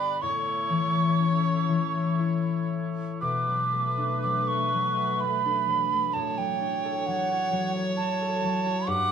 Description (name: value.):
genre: celtic folk, Celtic slow air.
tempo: 57-66 BPM.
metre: 3/4.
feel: rubato.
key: D major.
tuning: A4 = 443 Hz.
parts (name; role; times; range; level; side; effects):
mellow hollow wooden whistle; melody; 0.0-9.1 s; F#5 to D6; -26 LUFS; right 3 dB; none.
dark fiddle; second line; 0.0-9.1 s; B4 to F#5; -35 LUFS; left 2 dB; none.
concert harp; accompaniment; 0.0-9.1 s; G2 to F#5; -28 LUFS; left 4 dB; none.
clear woodwind section; sustained chords; 0.0-9.1 s; A2 to C#5; -36 LUFS; right 2 dB; none.
room: moderate studio reverb, RT60 0.9 s.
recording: band playing live in one room.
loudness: -24 LUFS.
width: side -7 dB against mid.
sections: 0.0-3.2 A section; 3.2-9.1 B section.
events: none.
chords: 0.2 A; 3.2 Bm7; 6.1 Dmaj7/A.